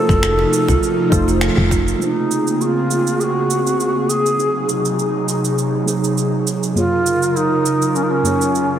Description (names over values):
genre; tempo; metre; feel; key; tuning
organic downtempo; 101 BPM; 4/4; swing 54% on 16ths; Bb minor; A4 = 439 Hz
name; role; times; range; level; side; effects
breathy bass bansuri; melody; 0.0-8.8 s; Db4 to A4; -19 LUFS; equal; ping-pong delay
deep mellow chord stab; accompaniment; 0.0-8.8 s; Gb2 to Db5; -27 LUFS; left 2 dB; chorus, sidechain pumping, ping-pong delay
airy breathy pad; sustained chords; 0.0-8.8 s; C3 to Bb4; -20 LUFS; equal; chorus, sidechain pumping
woody FM bass; bass; 0.1-1.9 s; F1 to C2; -18 LUFS; left 1 dB; sidechain pumping
electronic finger snaps and shaker; drums; 0.1-8.7 s; none; -25 LUFS; right 4 dB; none
electronic kick drum; drums; 0.1-1.8 s; none; -21 LUFS; left 1 dB; none
kalimba; arpeggios; 0.4-1.8 s; A3 to C5; -23 LUFS; right 5 dB; ping-pong delay
room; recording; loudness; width
moderate lush hall reverb, RT60 2.4 s; heavily compressed radio sound; -15 LUFS; side -10 dB against mid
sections
0.0-2.0 A section; 2.0-8.8 B section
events
band accent 1.4; filter sweep on synth stab 2.0-8.8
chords
0.0 F7; 2.0 Bbm9; 4.4 Ab7; 6.8 Gbmaj7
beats
0.23 0.82 1.42 | 2.01 2.60 3.20 3.79 | 4.39 4.98 5.57 6.17 | 6.76 7.36 7.95 8.54